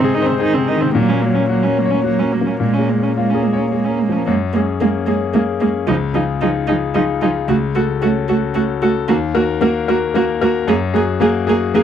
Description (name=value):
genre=neoclassical piano and strings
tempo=112 BPM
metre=3/4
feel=rubato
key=unclear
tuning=A4 = 439 Hz
part: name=rich cello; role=second line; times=0.0-11.8 s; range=C3 to Bb3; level=-20 LUFS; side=right 7 dB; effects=none
part: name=bright concert grand piano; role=accompaniment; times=0.0-11.8 s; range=Db2 to Db5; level=-17 LUFS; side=left 6 dB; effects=none
part: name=dark viola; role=accompaniment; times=0.0-11.8 s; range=Bb3 to Ab4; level=-20 LUFS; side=right 4 dB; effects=none
room=light reverb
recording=dry, close 1970s-style studio recording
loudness=-14 LUFS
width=side -9 dB against mid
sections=0.0-4.3 A section; 4.3-11.8 B section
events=none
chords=0.0 Ab; 0.9 Gb/Bb; 2.6 Bbm7; 4.3 Gbadd9; 5.9 Dbadd9; 7.5 Gbm/Db; 9.1 Ebm; 10.7 Gbadd9